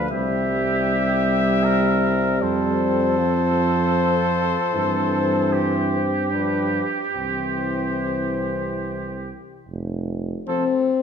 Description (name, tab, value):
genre	classical, brass quintet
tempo	70-79 BPM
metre	3/4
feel	rubato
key	C major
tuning	A4 = 440 Hz
part	warm trumpet	melody	0.0-10.6 s	B4 to E5	-26 LUFS	left 8 dB	none
part	warm trumpet	second line	0.0-10.6 s	G4 to Bb4	-26 LUFS	right 5 dB	none
part	mellow euphonium	accompaniment	0.0-10.6 s	E3 to G3	-26 LUFS	right 3 dB	none
part	warm French horn	accompaniment	0.0-11.0 s	C4 to D4	-25 LUFS	left 5 dB	none
part	mellow tuba	bass	0.0-10.3 s	F1 to G2	-26 LUFS	right 4 dB	none
room	wet recital hall reverb, RT60 1.6 s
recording	none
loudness	-19 LUFS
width	side -7 dB against mid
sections	0.0-9.7 A section; 9.7-11.0 B section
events	none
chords	0.1 C; 2.4 F; 4.7 C/G; 6.3 G7; 7.2 C; 9.7 F5